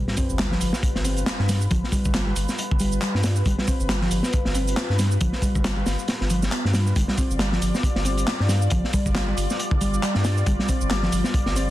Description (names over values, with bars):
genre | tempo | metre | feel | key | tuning
breakbeat, breaks | 137 BPM | 4/4 | swing 57% on 16ths | unclear | A4 = 444 Hz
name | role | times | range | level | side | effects
lush unison pad | sustained chords | 0.0-11.7 s | G3 to D5 | -31 LUFS | left 1 dB | chorus, phaser, sidechain pumping
saturated sub bass | bass | 0.0-11.7 s | G1 to G2 | -24 LUFS | equal | none
sub drop | sound effects | 0.0-1.7 s | none | -34 LUFS | equal | none
hollow-body short-scale picked electric bass | riff | 0.1-11.7 s | F3 to D4 | -28 LUFS | equal | ping-pong delay
crunchy breakbeat drum kit | drums | 0.1-11.7 s | hi-hat, kick drum, snare drum | -24 LUFS | equal | none
house drum kit | drums | 0.2-11.7 s | handclaps, hi-hat, shaker | -31 LUFS | right 1 dB | none
room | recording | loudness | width
studio reverb | dense, heavily limited modern master, vinyl crackle | -20 LUFS | side -15 dB against mid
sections
0.0-11.7 A section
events
impact 0.0-1.7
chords
0.0 G7